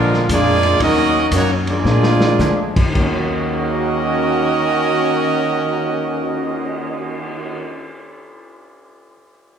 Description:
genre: jazz, big band swing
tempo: 105-120 BPM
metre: 4/4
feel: swing 67% on 8ths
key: Eb minor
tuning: A4 = 440 Hz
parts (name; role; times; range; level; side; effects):
- bright trumpet section; melody; 0.0-7.7 s; Ab3 to Eb5; -19 LUFS; right 3 dB; none
- clear trombone section; second line; 0.0-7.7 s; D3 to Gb4; -21 LUFS; equal; none
- picked steel-string acoustic guitar; accompaniment; 0.0-7.8 s; Bb2 to Gb4; -27 LUFS; left 2 dB; none
- warm grand piano; accompaniment; 0.0-8.9 s; Eb2 to Ab6; -27 LUFS; left 3 dB; none
- upright bass; bass; 0.0-7.7 s; Bb1 to D3; -22 LUFS; equal; none
- vintage drum kit; drums; 0.1-7.4 s; crash cymbal, cymbal swell, hi-hat, kick drum, ride cymbal, snare drum; -23 LUFS; equal; none
room: wet large studio reverb, RT60 1.3 s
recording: heard from further back in the room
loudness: -15 LUFS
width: side -8 dB against mid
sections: 0.0-3.0 A section; 3.0-7.5 B section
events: slowing down 0.0-3.0; drum fill 1.8-2.4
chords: 0.0 Bb7; 0.8 Ebm7; 1.8 Bb7; 3.0 Ebm7

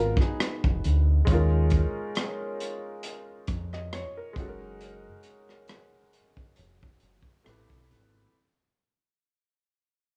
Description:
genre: R&B, neo-soul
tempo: 68 BPM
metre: 4/4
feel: swing 54% on 16ths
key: unclear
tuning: A4 = 441 Hz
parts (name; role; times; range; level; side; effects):
- flamenco guitar; second line; 0.0-1.2 s; D#4 to A#4; -34 LUFS; equal; plate reverb
- clear concert grand piano; accompaniment; 0.0-8.4 s; G#3 to D#5; -37 LUFS; equal; plate reverb
- deep dub fingered electric bass; bass; 0.0-8.3 s; E#1 to E#2; -26 LUFS; equal; none
- crunchy breakbeat drum kit; drums; 0.2-8.1 s; hi-hat, kick drum, rim click; -29 LUFS; equal; none
room: light reverb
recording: small room ambience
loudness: -27 LUFS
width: mono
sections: 0.0-8.3 A section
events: fade-out 0.0-8.3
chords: 0.0 G#m7; 1.3 D#9sus4; 4.4 F#69; 7.4 Am9

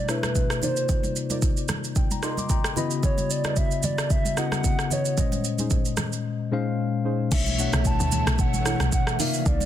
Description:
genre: amapiano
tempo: 112 BPM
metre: 4/4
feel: swing 55% on 16ths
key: unclear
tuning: A4 = 441 Hz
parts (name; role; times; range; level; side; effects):
- hollow clarinet-like synth lead; melody; 0.0-9.7 s; B4 to A5; -30 LUFS; right 2 dB; chorus, ping-pong delay
- mellow tine electric piano; accompaniment; 0.0-9.7 s; A#2 to D6; -27 LUFS; left 5 dB; none
- deep mellow chord stab; stabs; 0.1-9.4 s; C#4 to D#5; -34 LUFS; right 4 dB; chorus, ping-pong delay
- deep house drum kit; drums; 0.1-9.7 s; crash cymbal, hi-hat, kick drum, rim click, shaker; -25 LUFS; right 1 dB; soft clipping on snare
- congas; percussion; 0.2-9.7 s; none; -34 LUFS; right 3 dB; none
- string machine, violas; sustained chords; 7.3-9.7 s; E3 to C#5; -33 LUFS; equal; ensemble chorus, sidechain pumping
- woody log drum bass; bass; 7.3-9.7 s; A1 to D2; -26 LUFS; equal; none
room: light reverb, digital ambience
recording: dense, heavily limited modern master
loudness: -22 LUFS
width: side -11 dB against mid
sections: 0.0-7.3 A section; 7.3-9.7 B section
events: tine electric piano fill 2.0-3.0; drop 7.3-9.7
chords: 0.0 Bm11; 0.6 Cm11; 2.8 C#m11; 5.2 A#m11; 7.3 Bm11

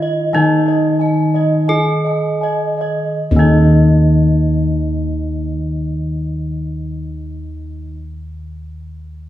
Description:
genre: Javanese gamelan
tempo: 38-47 BPM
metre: 4/4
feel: straight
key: unclear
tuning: A4 = 440 Hz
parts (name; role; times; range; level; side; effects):
- gamelan-type bronze metallophone; melody; 0.0-8.0 s; Eb4 to Ab4+30c; -20 LUFS; equal; none
- gamelan-type bronze metallophone; accompaniment; 0.0-7.9 s; Eb3; -18 LUFS; right 1 dB; none
- gamelan-type bossed gongs; arpeggios; 0.0-7.9 s; Eb5 to Ab5+30c; -23 LUFS; left 1 dB; none
- gamelan-type bronze metallophone; arpeggios; 0.0-8.0 s; Eb5 to Ab5+30c; -24 LUFS; right 3 dB; none
- gamelan-type bossed gongs; bass; 0.0-7.9 s; Eb2 to Fb4+50c; -19 LUFS; left 1 dB; none
room: wet recital hall reverb, RT60 1.4 s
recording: recorded in a church or concert hall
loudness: -13 LUFS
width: side -13 dB against mid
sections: 0.0-3.2 A section; 3.2-9.3 B section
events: slowing down 0.0-3.2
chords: none

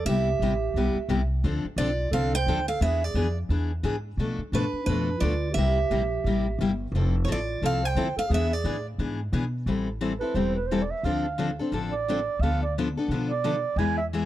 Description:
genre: acoustic string swing (jazz manouche)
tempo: 175 BPM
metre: 4/4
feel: swing 60% on 8ths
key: A minor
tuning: A4 = 440 Hz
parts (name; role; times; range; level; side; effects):
- picked steel-string acoustic guitar; melody; 0.0-8.9 s; B4 to G5; -29 LUFS; right 2 dB; none
- breathy clarinet; second line; 0.0-14.1 s; D4 to G#5; -31 LUFS; right 6 dB; none
- upright bass; bass; 0.0-14.3 s; E1 to B2; -28 LUFS; equal; none
- picked steel-string acoustic guitar; accompaniment; 0.1-14.2 s; B2 to A4; -28 LUFS; left 3 dB; none
room: small room ambience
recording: dry, close 1970s-style studio recording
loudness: -24 LUFS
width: side -13 dB against mid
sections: 0.0-9.7 A section; 9.7-14.3 B section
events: clarinet solo 9.7-14.3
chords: 0.1 Cmaj7; 1.4 Dm7; 2.8 E7; 4.2 Bm7b5; 5.6 C7; 6.9 Fmaj7; 8.3 E7; 9.7 Am7; 11.0 Dm7; 12.4 Bm7b5/D

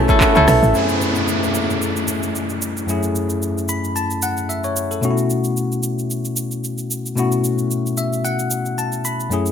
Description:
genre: amapiano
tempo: 112 BPM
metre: 4/4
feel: swing 55% on 16ths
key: unclear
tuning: A4 = 441 Hz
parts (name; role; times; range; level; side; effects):
- bell-like tine electric piano; accompaniment; 0.0-9.5 s; F#2 to B5; -19 LUFS; left 2 dB; wide subtle chorus
- phased string machine; sustained chords; 0.0-0.7 s; A3 to E4; -32 LUFS; right 1 dB; none
- woody log drum bass; bass; 0.0-0.7 s; A1 to C#2; -16 LUFS; right 1 dB; none
- afro-pop drum kit; drums; 0.1-9.5 s; handclaps, hi-hat, kick drum, rim click, shaker; -23 LUFS; right 1 dB; gated reverb
- bongos and congas; percussion; 0.1-0.6 s; none; -28 LUFS; right 4 dB; none
- soft round pluck; stabs; 0.5-0.6 s; A4 to E5; -27 LUFS; right 7 dB; none
- downlifter; sound effects; 0.7-5.0 s; none; -25 LUFS; right 1 dB; none
room: moderate plate reverb, RT60 1.6 s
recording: bright 1980s-style digital production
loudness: -17 LUFS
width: side -8 dB against mid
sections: 0.7-9.5 A section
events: tine electric piano fill 0.0-0.7, 3.4-5.0, 7.7-9.3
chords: 0.0 B7sus4; 0.7 F#m7; 5.0 B7sus4

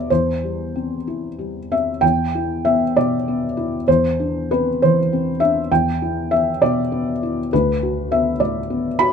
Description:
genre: neoclassical minimalist piano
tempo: 66 BPM (dotted quarters)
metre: 6/8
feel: rubato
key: unclear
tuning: A4 = 440 Hz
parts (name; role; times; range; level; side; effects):
- felt-muted upright piano; solo; 0.0-9.1 s; D2 to B5; -17 LUFS; equal; none
room: light reverb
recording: minimal, uncompressed stereo recording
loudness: -17 LUFS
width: side -6 dB against mid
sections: 0.0-2.0 A section; 2.0-9.1 B section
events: none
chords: 0.1 C/E; 2.0 Em; 3.9 Cadd9/E; 5.7 Em; 7.5 D6

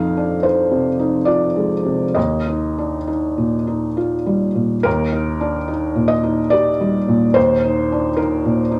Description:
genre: neoclassical minimalist piano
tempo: 65-74 BPM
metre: 3/4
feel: rubato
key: Eb major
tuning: A4 = 440 Hz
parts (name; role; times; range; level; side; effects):
- felt-muted upright piano; solo; 0.0-8.8 s; Eb2 to F5; -18 LUFS; equal; none
room: moderate studio reverb, RT60 0.8 s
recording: none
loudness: -18 LUFS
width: mono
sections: 0.0-4.9 A section; 4.9-8.8 A section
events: none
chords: 0.0 Fm7; 2.2 Ebadd9; 4.9 Eb

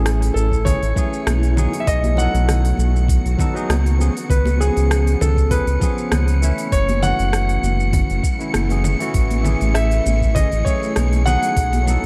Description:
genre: sunset chillout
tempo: 99 BPM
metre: 4/4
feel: swing 54% on 16ths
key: A lydian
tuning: A4 = 438 Hz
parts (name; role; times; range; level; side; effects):
- warm concert grand piano; melody; 0.0-12.1 s; G#4 to F#5; -26 LUFS; equal; tape echo
- barky tine electric piano; accompaniment; 0.0-12.1 s; E3 to A4; -28 LUFS; equal; digital delay
- shimmering ambient pad; sustained chords; 0.0-12.1 s; C#3 to G#5; -32 LUFS; equal; chorus, built-in reverb
- round analog bass; bass; 0.0-12.1 s; F#1 to C#2; -20 LUFS; equal; tube saturation
- wind-like tuned noise texture; texture; 0.0-12.1 s; C#7; -34 LUFS; equal; built-in reverb
- smooth R&B drum kit; drums; 0.1-12.1 s; congas, hi-hat, rim click, shaker; -29 LUFS; equal; small room ambience
- electronic kick drum; drums; 0.5-11.7 s; none; -23 LUFS; equal; small room ambience
- congas; percussion; 1.0-12.0 s; none; -32 LUFS; equal; none
room: light reverb, digital ambience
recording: dark, warm production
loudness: -18 LUFS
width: mono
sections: 0.0-12.1 A section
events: none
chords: 0.0 Amaj7; 1.6 B7; 4.0 C#7; 6.7 F#m7; 9.1 Amaj7; 11.3 B7

